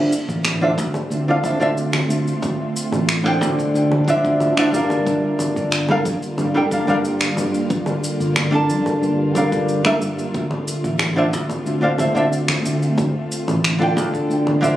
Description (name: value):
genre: sunset chillout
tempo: 91 BPM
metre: 4/4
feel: straight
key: D minor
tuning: A4 = 441 Hz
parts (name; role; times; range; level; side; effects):
- nylon-string guitar; accompaniment; 0.0-14.8 s; D3 to A5; -20 LUFS; equal; auto-pan, tape echo
- ethereal airy pad; sustained chords; 0.0-14.8 s; D3 to F4; -26 LUFS; equal; ensemble chorus, built-in reverb
- electronic shaker, finger snaps and congas; drums; 0.1-14.8 s; none; -24 LUFS; equal; overdrive, studio reverb
- fingered electric bass; bass; 0.3-14.7 s; G1 to G2; -22 LUFS; equal; none
- electronic kick drum; drums; 0.3-14.8 s; none; -28 LUFS; equal; overdrive, studio reverb
room: light reverb, digital ambience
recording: recorded on a phone in the room, studio reverb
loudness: -17 LUFS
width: side -13 dB against mid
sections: 0.0-14.8 A section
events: none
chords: 0.0 Dm7; 4.7 Gm7; 10.3 Dm7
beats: 0.45 1.11 1.77 | 2.43 3.09 3.75 4.41 | 5.07 5.73 6.39 7.05 | 7.71 8.36 9.02 9.68 | 10.34 11.00 11.66 12.32 | 12.98 13.64 14.30